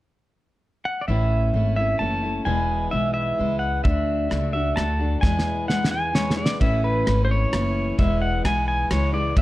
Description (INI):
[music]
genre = honky-tonk and classic country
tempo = 130 BPM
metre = 3/4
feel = straight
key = A major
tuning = A4 = 440 Hz
[part]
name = pedal steel guitar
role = melody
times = 0.9-9.4 s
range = B4 to A5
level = -25 LUFS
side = right 1 dB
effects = none
[part]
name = picked steel-string acoustic guitar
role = accompaniment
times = 1.1-9.4 s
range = E2 to F#4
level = -27 LUFS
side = left 3 dB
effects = none
[part]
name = upright bass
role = bass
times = 1.1-9.4 s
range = E1 to E2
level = -24 LUFS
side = equal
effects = none
[part]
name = cloth-damped thuddy drum kit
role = drums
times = 3.9-9.4 s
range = kick drum, ride cymbal, rim click, snare drum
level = -23 LUFS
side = equal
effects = none
[sound]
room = moderate large studio reverb, RT60 1.1 s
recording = dark, warm production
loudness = -20 LUFS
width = side -16 dB against mid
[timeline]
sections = 0.0-1.1 A section; 1.1-6.6 B section; 6.6-9.4 C section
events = drum fill 5.2-6.6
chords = 0.0 N.C.; 1.1 A; 2.5 E; 3.8 D; 5.2 E; 6.6 A; 8.0 E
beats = 0.17 0.63 | 1.09 1.55 2.01 | 2.47 2.93 3.39 | 3.85 4.31 4.77 | 5.23 5.69 6.15 | 6.61 7.07 7.53 | 7.99 8.45 8.90 | 9.37